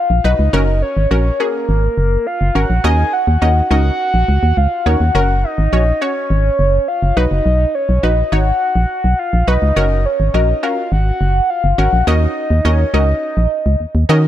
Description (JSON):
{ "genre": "dance-pop", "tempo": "104 BPM", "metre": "4/4", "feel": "straight", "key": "unclear", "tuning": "A4 = 441 Hz", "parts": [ { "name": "soft octave-layered synth lead", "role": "melody", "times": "0.0-13.8 s", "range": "Bb4 to Ab5", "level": "-18 LUFS", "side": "equal", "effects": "chorus, phaser, digital delay" }, { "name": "organ-like FM bass", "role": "bass", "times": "0.1-14.3 s", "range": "Gb1 to Eb3", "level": "-14 LUFS", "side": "equal", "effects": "none" }, { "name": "wide unison pluck", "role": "accompaniment", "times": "0.2-14.3 s", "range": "Db4 to Eb5", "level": "-20 LUFS", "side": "equal", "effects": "none" } ], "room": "little or no reverb", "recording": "none", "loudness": "-13 LUFS", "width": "side -12 dB against mid", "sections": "0.0-14.3 A section", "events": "none", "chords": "0.0 B; 0.5 Gb; 2.8 Ebm7; 5.2 Gb; 7.2 B; 9.8 Gb; 12.1 Ebm7" }